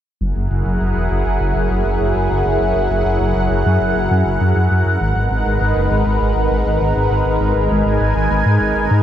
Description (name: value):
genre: synthwave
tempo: 100 BPM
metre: 4/4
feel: straight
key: unclear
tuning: A4 = 440 Hz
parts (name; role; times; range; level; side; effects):
- lush unison pad; sustained chords; 0.4-9.0 s; F#3 to G#5; -17 LUFS; equal; chorus, phaser
- wide detuned saw bass; bass; 0.2-9.0 s; E1 to G#2; -17 LUFS; equal; chorus
room: moderate plate reverb, RT60 3.4 s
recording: bright 1980s-style digital production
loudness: -14 LUFS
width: side -10 dB against mid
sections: 0.2-9.0 A section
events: none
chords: 0.2 F#7; 5.0 G#m7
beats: | 0.21 0.81 1.41 2.01 | 2.61 3.21 3.81 4.41 | 5.01 5.61 6.21 6.81 | 7.41 8.01 8.61